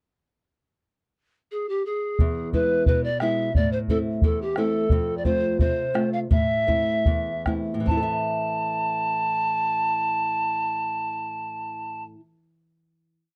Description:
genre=andean folk, Andean ensemble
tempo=70-89 BPM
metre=2/4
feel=straight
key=A harmonic minor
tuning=A4 = 438 Hz
part: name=polished pan flute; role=melody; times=1.5-12.0 s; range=G4 to A5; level=-27 LUFS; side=equal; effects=none
part: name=nylon-string guitar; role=accompaniment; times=2.2-12.4 s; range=E2 to E5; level=-30 LUFS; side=equal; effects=none
part: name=bombo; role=percussion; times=2.2-8.3 s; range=none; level=-25 LUFS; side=equal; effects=none
room=little or no reverb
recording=dry, close 1970s-style studio recording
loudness=-24 LUFS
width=mono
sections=0.8-2.2 pickup bar; 2.2-7.9 A section; 7.9-11.3 final chord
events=slowing down 4.9-7.9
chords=0.8 N.C.; 2.2 E; 3.6 Am; 4.9 F; 6.3 Am

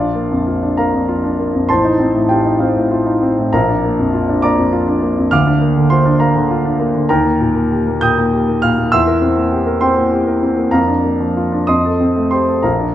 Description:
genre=classical, virtuoso piano study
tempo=62-68 BPM (dotted quarters)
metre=6/8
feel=rubato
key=Bb major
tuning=A4 = 441 Hz
part: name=warm grand piano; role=solo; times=0.0-12.9 s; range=A1 to G6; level=-12 LUFS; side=equal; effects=none
room=wet recital hall reverb, RT60 1.4 s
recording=none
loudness=-12 LUFS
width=side -12 dB against mid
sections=0.0-12.9 A section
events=none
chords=0.0 Bb; 1.7 F7/A; 3.5 Bb; 5.3 Bb/D; 7.1 Eb; 8.9 C7/E; 10.7 Bb/F; 11.7 F9

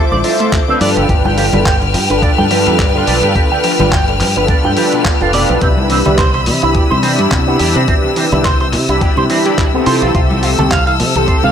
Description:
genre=nu-disco, nu disco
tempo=106 BPM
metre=4/4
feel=swing 56% on 16ths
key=unclear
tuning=A4 = 439 Hz
part: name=mellow synth brass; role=accompaniment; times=0.0-11.5 s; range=C4 to B5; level=-16 LUFS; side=equal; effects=chorus, sidechain pumping, ping-pong delay
part: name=clear studio string section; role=sustained chords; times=0.0-11.5 s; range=A4 to F6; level=-19 LUFS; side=left 3 dB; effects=sidechain pumping
part: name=analog pluck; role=arpeggios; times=0.0-11.5 s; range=B2 to D4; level=-22 LUFS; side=right 2 dB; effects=chorus, sidechain pumping, diffuse ambient delay
part: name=electric guitar with an envelope filter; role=riff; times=0.0-11.5 s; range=B3 to G5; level=-19 LUFS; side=right 3 dB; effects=wide subtle chorus, ping-pong delay
part: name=fingered electric bass with an envelope filter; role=bass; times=0.1-11.5 s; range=F1 to C3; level=-17 LUFS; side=equal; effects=tube saturation, sidechain pumping
part: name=congas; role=percussion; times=0.1-11.5 s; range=none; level=-23 LUFS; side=left 2 dB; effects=none
part: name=dusty soul sampler-style drum kit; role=drums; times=0.2-11.4 s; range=handclaps, hi-hat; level=-21 LUFS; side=equal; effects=none
part: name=electronic kick drum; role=drums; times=0.5-11.4 s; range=none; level=-15 LUFS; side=equal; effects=none
room=moderate plate reverb, RT60 1.4 s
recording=dreamy mix soaked in reverb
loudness=-10 LUFS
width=side -8 dB against mid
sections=0.0-11.5 A section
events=none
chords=0.0 Dm7; 0.8 G7; 5.6 Cmaj7; 9.9 Fmaj7/C

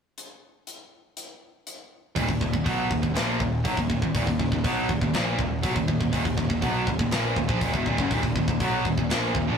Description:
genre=heavy metal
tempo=121 BPM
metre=4/4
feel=straight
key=Eb minor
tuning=A4 = 440 Hz
part: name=tight metal drum kit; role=drums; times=0.2-9.5 s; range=hi-hat, kick drum, snare drum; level=-28 LUFS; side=equal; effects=none
part: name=distorted electric guitar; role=riff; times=2.2-9.6 s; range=Eb2 to Cb4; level=-29 LUFS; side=left 4 dB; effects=distortion
part: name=tight distorted guitar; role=riff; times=2.2-9.6 s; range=Eb2 to Cb4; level=-27 LUFS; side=right 4 dB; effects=distortion
part: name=fuzz picked electric bass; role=bass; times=2.2-9.6 s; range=Eb1 to Cb2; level=-30 LUFS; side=equal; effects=overdrive
room=light reverb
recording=rough rehearsal-room recording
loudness=-22 LUFS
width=side -7 dB against mid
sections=0.2-2.2 A section; 2.2-9.6 B section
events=none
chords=0.2 N.C.; 2.2 Ebm

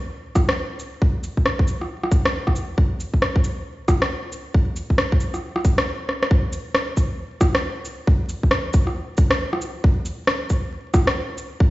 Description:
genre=future garage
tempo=136 BPM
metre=4/4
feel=swing 62% on 16ths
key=none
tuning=none
part: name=electronic kick drum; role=drums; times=0.4-11.7 s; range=none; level=-18 LUFS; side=equal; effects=overdrive
part: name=electronic rim click and shaker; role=drums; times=0.4-11.5 s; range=none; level=-23 LUFS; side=equal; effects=overdrive
room=light reverb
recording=played on a big sound system in a bare room, stone room reverb, vinyl crackle, nothing above 7.8 kHz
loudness=-19 LUFS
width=side -18 dB against mid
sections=0.0-6.3 A section; 6.3-11.7 B section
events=stop 5.9-6.3; drum fill 6.1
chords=none

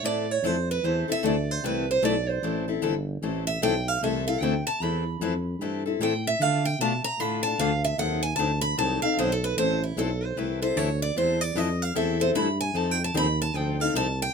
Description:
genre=acoustic string swing (jazz manouche)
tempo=151 BPM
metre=4/4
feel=swing 62% on 8ths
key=A minor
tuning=A4 = 439 Hz
part: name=picked steel-string acoustic guitar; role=melody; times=0.0-14.3 s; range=E4 to B5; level=-27 LUFS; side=right 3 dB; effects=none
part: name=picked steel-string acoustic guitar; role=accompaniment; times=0.0-14.1 s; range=D3 to A4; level=-28 LUFS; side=left 7 dB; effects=none
part: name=dark tuba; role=bass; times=0.0-14.3 s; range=G1 to D3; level=-29 LUFS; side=right 1 dB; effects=none
room=light reverb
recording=minimal, uncompressed stereo recording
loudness=-23 LUFS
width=side -6 dB against mid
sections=0.0-14.3 A section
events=steel-string acoustic guitar solo 0.0-14.3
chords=0.0 Am; 6.4 Dm; 8.0 D#dim7; 9.6 Am; 12.7 F7

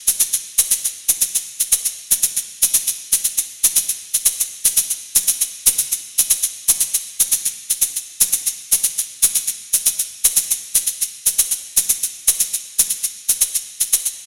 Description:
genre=techno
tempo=118 BPM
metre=4/4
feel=swing 54% on 16ths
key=none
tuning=none
part: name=tube shaker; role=percussion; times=0.1-14.2 s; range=none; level=-16 LUFS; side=equal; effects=none
room=moderate lush hall reverb, RT60 2.8 s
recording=played on a big sound system in a bare room, stone room reverb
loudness=-16 LUFS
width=mono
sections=0.0-14.3 A section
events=none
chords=none

